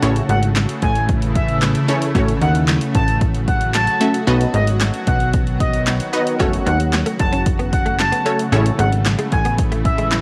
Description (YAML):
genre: dance-pop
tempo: 113 BPM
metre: 4/4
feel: straight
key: F# dorian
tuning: A4 = 441 Hz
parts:
  - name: unison pluck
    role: accompaniment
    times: 0.0-9.4 s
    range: A3 to E5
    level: -23 LUFS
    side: equal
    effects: phaser, cassette tape
  - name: shimmering ambient pad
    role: sustained chords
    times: 0.0-10.2 s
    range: C#3 to F#4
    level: -26 LUFS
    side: equal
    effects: chorus, built-in reverb, sidechain pumping, cassette tape
  - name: plucky analog bass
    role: bass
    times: 0.0-10.2 s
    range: F#1 to D#2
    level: -22 LUFS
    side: equal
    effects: sidechain pumping
  - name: punchy analog drum machine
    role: drums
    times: 0.0-10.2 s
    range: handclaps, hi-hat, kick drum, snare drum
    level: -23 LUFS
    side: equal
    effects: overdrive
  - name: expressive synth lead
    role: melody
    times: 0.3-10.1 s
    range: D#5 to A5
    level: -25 LUFS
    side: equal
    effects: chorus, sidechain pumping, cassette tape, tape echo
  - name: direct-recorded clean electric guitar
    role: riff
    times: 6.4-10.1 s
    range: G#3 to F#4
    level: -28 LUFS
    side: equal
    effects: ensemble chorus, cassette tape
room: light reverb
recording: home recording on cassette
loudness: -17 LUFS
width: mono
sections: 0.0-10.2 A section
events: none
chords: 0.0 Amaj7; 2.1 F#m/A; 4.3 B; 6.4 F#m; 8.5 Amaj7